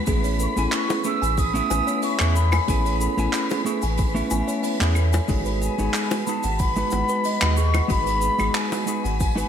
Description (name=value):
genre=sunset chillout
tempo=92 BPM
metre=4/4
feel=straight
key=A lydian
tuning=A4 = 444 Hz
part: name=semi-hollow electric guitar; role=accompaniment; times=0.0-9.5 s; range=G#3 to G#5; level=-26 LUFS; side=moving between left 2 dB and right 4 dB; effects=auto-pan, ping-pong delay
part: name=wind-like tuned noise texture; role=texture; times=0.0-9.5 s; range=B4 to B5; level=-32 LUFS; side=equal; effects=built-in reverb, analog chorus
part: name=kalimba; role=arpeggios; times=0.1-9.2 s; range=F#4 to C#6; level=-31 LUFS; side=right 3 dB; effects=ping-pong delay
part: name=warm sub bass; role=bass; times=0.1-9.4 s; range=G#1 to E2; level=-23 LUFS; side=equal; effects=none
part: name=electronic kick drum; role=drums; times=0.1-9.3 s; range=none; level=-25 LUFS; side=equal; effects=none
part: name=soft brush drum kit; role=drums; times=0.1-9.5 s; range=claves, handclaps, hi-hat, shaker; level=-29 LUFS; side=equal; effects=gated reverb
part: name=mellow wooden flute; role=melody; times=0.4-9.5 s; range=G#5 to E6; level=-26 LUFS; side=left 2 dB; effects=digital delay
part: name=bongos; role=percussion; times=0.9-8.8 s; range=none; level=-32 LUFS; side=left 5 dB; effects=none
room=moderate lush hall reverb, RT60 2.8 s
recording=bright 1980s-style digital production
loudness=-20 LUFS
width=side -8 dB against mid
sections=0.0-9.5 A section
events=none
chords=0.1 Amaj7; 5.3 G#m7